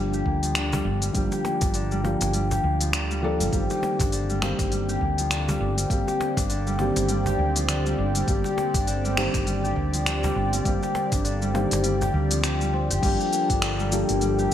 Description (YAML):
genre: organic downtempo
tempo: 101 BPM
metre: 4/4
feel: swing 58% on 16ths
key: unclear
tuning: A4 = 438 Hz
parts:
  - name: felt-muted upright piano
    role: accompaniment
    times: 0.0-14.5 s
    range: Eb3 to A4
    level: -30 LUFS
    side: left 2 dB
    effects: wide subtle chorus, sidechain pumping, digital delay
  - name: Celtic harp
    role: arpeggios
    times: 0.0-14.5 s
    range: D3 to G4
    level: -27 LUFS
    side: left 1 dB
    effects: low-pass filter, digital delay
  - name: woody fretless electric bass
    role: bass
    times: 0.0-14.5 s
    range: G1 to D2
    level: -27 LUFS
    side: right 1 dB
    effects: analog chorus, sidechain pumping
  - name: organic electronic drum kit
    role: drums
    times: 0.1-14.5 s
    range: crash cymbal, finger snaps, hi-hat, shaker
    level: -29 LUFS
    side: left 1 dB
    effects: gated reverb
  - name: electronic kick drum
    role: drums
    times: 0.3-13.6 s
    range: none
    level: -28 LUFS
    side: right 1 dB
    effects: none
  - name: cajon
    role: percussion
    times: 0.7-12.1 s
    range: none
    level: -35 LUFS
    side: equal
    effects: none
  - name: warm analog pad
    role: sustained chords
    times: 3.5-14.5 s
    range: G3 to D5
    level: -31 LUFS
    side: right 1 dB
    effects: chorus, sidechain pumping
room: wet plate reverb, RT60 2.1 s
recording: bright 1980s-style digital production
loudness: -22 LUFS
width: side -10 dB against mid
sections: 0.0-13.0 A section; 13.0-14.5 B section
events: none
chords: 0.0 Gm7; 3.5 Cm7/G; 13.0 Gm7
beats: 0.56 | 1.15 1.74 2.34 2.93 | 3.53 4.12 4.71 5.31 | 5.90 6.50 7.09 7.68 | 8.28 8.87 9.47 10.06 | 10.65 11.25 11.84 12.44 | 13.03 13.62 14.22